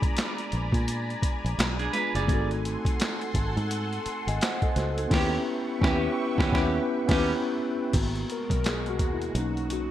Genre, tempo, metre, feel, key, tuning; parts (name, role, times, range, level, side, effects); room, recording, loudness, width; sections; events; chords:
R&B, neo-soul; 85 BPM; 4/4; swing 60% on 16ths; A4 = 441 Hz
mellow tine electric piano; accompaniment; 0.0-9.9 s; G#3 to G#5; -30 LUFS; left 1 dB; medium stereo tremolo
lush unison pad; sustained chords; 0.0-9.9 s; B2 to C#6; -35 LUFS; equal; chorus, phaser
boom bap sampler-style drum kit; drums; 0.0-9.9 s; crash cymbal, handclaps, hi-hat, kick drum, snare drum; -28 LUFS; equal; gated reverb
fingered electric bass; bass; 0.5-9.9 s; F#1 to A#2; -30 LUFS; equal
clean electric guitar; second line; 1.8-7.3 s; C#4 to D5; -32 LUFS; right 3 dB; lush chorus
light reverb; bright 1980s-style digital production; -24 LUFS; side -12 dB against mid
0.0-7.9 A section; 7.9-9.9 B section
band accent 5.1-7.9; tine electric piano solo 7.9-9.9
0.0 A#7b9; 2.3 G#7b9; 5.1 D#7b9b13; 7.9 G#m9; 9.3 Bmaj7